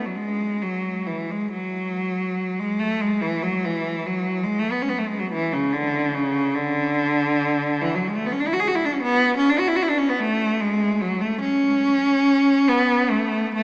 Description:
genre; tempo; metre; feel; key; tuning
classical, free, expressive piece for unaccompanied cello; 65-79 BPM; 3/4; rubato; F# minor; A4 = 441 Hz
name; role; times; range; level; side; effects
bright cello; solo; 0.0-13.6 s; C#3 to G#4; -19 LUFS; equal; none
room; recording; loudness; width
wet church reverb, RT60 3.5 s; small speaker sound; -19 LUFS; side -28 dB against mid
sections
0.0-13.6 A section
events
none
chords
none

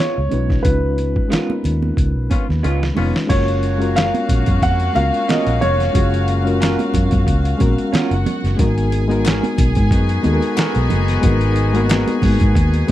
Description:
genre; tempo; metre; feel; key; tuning
lush 1970s-style soul; 91 BPM; 4/4; swing 54% on 16ths; unclear; A4 = 439 Hz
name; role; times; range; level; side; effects
warm concert grand piano; melody; 0.0-6.2 s; Cb5 to Gb5; -22 LUFS; equal; none
mellow reed electric piano; accompaniment; 0.0-12.9 s; Ab3 to Cb5; -22 LUFS; left 2 dB; fast tremolo
electric guitar through a small old amp; riff; 0.0-12.1 s; Ab3 to Bb4; -26 LUFS; right 8 dB; none
lo-fi sampler-style drum kit; drums; 0.0-12.9 s; crash cymbal, hi-hat, kick drum, snare drum; -19 LUFS; equal; none
congas; percussion; 0.0-12.9 s; none; -26 LUFS; right 6 dB; none
vintage muted fingered electric bass; bass; 0.2-12.8 s; F1 to Ab2; -18 LUFS; equal; none
warm horn section; stabs; 2.3-12.9 s; Bb3 to Gb4; -27 LUFS; left 6 dB; none
warm studio string section; second line; 3.3-12.9 s; Gb4 to Ab5; -27 LUFS; right 1 dB; none
group handclap; percussion; 9.3-12.1 s; none; -32 LUFS; left 15 dB; none
room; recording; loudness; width
studio reverb; dry, close 1970s-style studio recording; -14 LUFS; side -13 dB against mid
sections
0.0-3.3 A section; 3.3-12.9 B section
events
band accent 0.6-3.3; drum fill 2.6-3.3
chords
0.0 Db7; 3.3 Gbmaj7; 8.6 Abm9

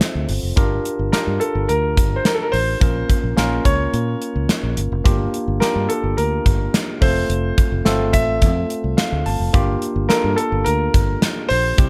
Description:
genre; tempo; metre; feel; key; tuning
1980s-style pop; 107 BPM; 4/4; straight; unclear; A4 = 442 Hz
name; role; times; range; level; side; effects
clear baby grand piano; melody; 0.0-11.9 s; A4 to E5; -25 LUFS; equal; none
barky tine electric piano; accompaniment; 0.0-11.9 s; G3 to A5; -26 LUFS; equal; none
gated 80s drum kit; drums; 0.0-11.9 s; hi-hat, kick drum, snare drum; -21 LUFS; equal; none
fingered electric bass; bass; 0.2-11.9 s; F1 to Bb2; -24 LUFS; equal; none
room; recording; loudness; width
little or no reverb; none; -19 LUFS; mono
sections
0.0-11.9 A section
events
tine electric piano fill 8.7-9.5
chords
0.0 F; 0.6 Gm7; 2.8 Bbm; 5.1 Gm7; 7.0 F; 9.5 Gm7

